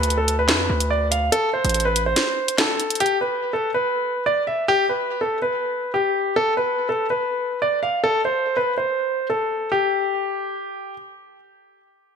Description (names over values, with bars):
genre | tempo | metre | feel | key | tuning
hip hop, drill | 143 BPM | 4/4 | half-time | unclear | A4 = 440 Hz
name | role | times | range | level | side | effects
warm concert grand piano | melody | 0.0-10.9 s | G4 to F5 | -20 LUFS | equal | digital delay
distorted 808-style bass | bass | 0.0-2.1 s | A1 to F2 | -23 LUFS | equal | distortion
drill drum kit | drums | 0.0-3.1 s | handclaps, hi-hat, snare drum | -21 LUFS | equal | gated reverb
room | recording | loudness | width
moderate lush hall reverb, RT60 1.7 s, digital ambience | bright 1980s-style digital production | -19 LUFS | side -6 dB against mid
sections
0.0-9.7 A section; 9.7-12.2 B section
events
kick muted 2.2-3.0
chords
0.0 Dm; 1.3 Am; 3.0 N.C.